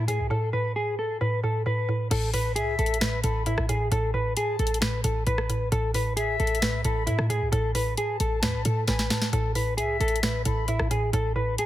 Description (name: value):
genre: hip hop, trap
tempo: 133 BPM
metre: 4/4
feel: half-time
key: unclear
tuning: A4 = 440 Hz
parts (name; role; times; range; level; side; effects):
- mellow electric guitar; melody; 0.0-11.7 s; E4 to B4; -28 LUFS; equal; ping-pong delay
- mallet-like synth pluck; accompaniment; 0.0-11.7 s; A2; -29 LUFS; right 1 dB; chorus
- short 808-style bass; bass; 0.0-11.6 s; A1 to A2; -29 LUFS; equal; none
- trap drum kit; drums; 0.1-11.7 s; crash cymbal, finger snaps, hi-hat, rim click, snare drum; -30 LUFS; equal; none
- concert flute; second line; 2.6-11.7 s; E5 to B5; -34 LUFS; left 5 dB; ping-pong delay
room: digital ambience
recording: heavily compressed radio sound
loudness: -23 LUFS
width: side -14 dB against mid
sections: 0.0-2.1 A section; 2.1-11.7 B section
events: drum fill 8.9-9.3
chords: 0.0 Asus2